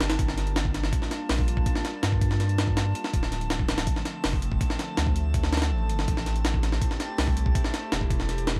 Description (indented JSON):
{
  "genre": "drum and bass, jungle",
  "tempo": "163 BPM",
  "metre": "4/4",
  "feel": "straight",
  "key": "G dorian",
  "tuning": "A4 = 444 Hz",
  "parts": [
    { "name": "saturated sub bass", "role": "bass", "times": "0.0-8.6 s", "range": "D1 to G2", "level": "-29 LUFS", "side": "equal", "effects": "none" },
    { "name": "breakbeat sampler-style drum kit", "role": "drums", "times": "0.0-8.6 s", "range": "hi-hat, kick drum, snare drum", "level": "-29 LUFS", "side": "equal", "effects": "none" },
    { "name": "drifting glass-harmonics texture", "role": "texture", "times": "0.0-8.6 s", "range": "A5", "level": "-41 LUFS", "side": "equal", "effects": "chorus, built-in reverb" }
  ],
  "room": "little or no reverb",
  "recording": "vinyl crackle",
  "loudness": "-26 LUFS",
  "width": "mono",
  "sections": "0.0-8.6 A section",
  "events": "none",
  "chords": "0.2 Gm7; 3.1 Dm7; 6.1 Am7",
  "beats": "| 0.19 0.56 0.93 1.29 | 1.66 2.03 2.40 2.77 | 3.13 3.50 3.87 4.24 | 4.61 4.98 5.34 5.71 | 6.08 6.45 6.82 7.18 | 7.55 7.92 8.29"
}